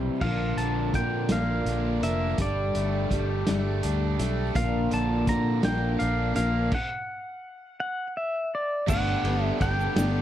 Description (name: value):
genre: folk rock and heartland rock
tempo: 55 BPM (dotted quarters)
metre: 6/8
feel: straight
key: unclear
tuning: A4 = 440 Hz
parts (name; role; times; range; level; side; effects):
- picked steel-string acoustic guitar; accompaniment; 0.0-10.2 s; G2 to Bb4; -30 LUFS; left 2 dB; none
- raw garage guitar; riff; 0.0-10.2 s; G2 to G4; -31 LUFS; right 2 dB; overdrive
- fingered electric bass; bass; 0.0-10.2 s; F1 to Bb2; -29 LUFS; equal; none
- pedal steel guitar; melody; 0.2-10.2 s; D5 to Bb5; -31 LUFS; left 1 dB; tape echo
- pedal harmonium; sustained chords; 0.2-10.2 s; B3 to Bb4; -40 LUFS; right 3 dB; none
- vintage drum kit; drums; 0.2-10.1 s; crash cymbal, hi-hat, kick drum, ride cymbal, snare drum; -30 LUFS; equal; none
- egg shaker; percussion; 8.9-10.1 s; none; -43 LUFS; right 16 dB; none
room: light reverb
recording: dark, warm production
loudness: -24 LUFS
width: side -11 dB against mid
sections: 0.2-8.9 A section; 8.9-10.2 B section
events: stop 6.7-8.9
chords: 0.2 Bb; 2.4 Gsus2; 4.6 Bb; 6.7 N.C.; 8.9 Gadd9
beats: | 0.22 1.30 | 2.39 3.47 | 4.56 5.64 | 6.73 7.81 | 8.89 9.97